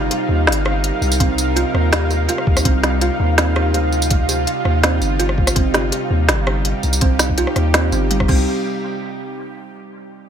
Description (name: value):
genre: half-time drum and bass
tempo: 165 BPM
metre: 4/4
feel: half-time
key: C minor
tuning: A4 = 441 Hz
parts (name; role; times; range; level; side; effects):
- bowed-like drone; sustained chords; 0.0-8.5 s; C3 to Bb4; -23 LUFS; equal; built-in reverb, vintage 12-bit sampler grit, sidechain pumping
- kalimba; arpeggios; 0.0-8.5 s; G3 to G4; -24 LUFS; right 4 dB; vintage 12-bit sampler grit, dub echo
- long sustained 808-style bass; bass; 0.0-8.5 s; G1 to Eb2; -19 LUFS; equal; none
- pulsing gated texture; texture; 0.0-8.5 s; F5; -27 LUFS; right 3 dB; chorus, built-in reverb
- organic electronic drum kit; drums; 0.1-8.4 s; crash cymbal, hi-hat, rim click, snare drum, tambourine; -19 LUFS; equal; overdrive, small room ambience
- electronic kick drum; drums; 1.2-8.4 s; none; -17 LUFS; equal; overdrive, small room ambience
room: light reverb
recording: none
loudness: -15 LUFS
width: side -8 dB against mid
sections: 0.0-8.5 A section; 8.5-9.9 B section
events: drop 0.0-8.5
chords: 0.0 Cm; 8.5 N.C.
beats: 0.11 0.47 0.83 | 1.20 1.56 1.92 2.29 | 2.65 3.02 3.38 3.74 | 4.11 4.47 4.83 5.20 | 5.56 5.92 6.29 6.65 | 7.01 7.38 7.74 8.11 | 8.47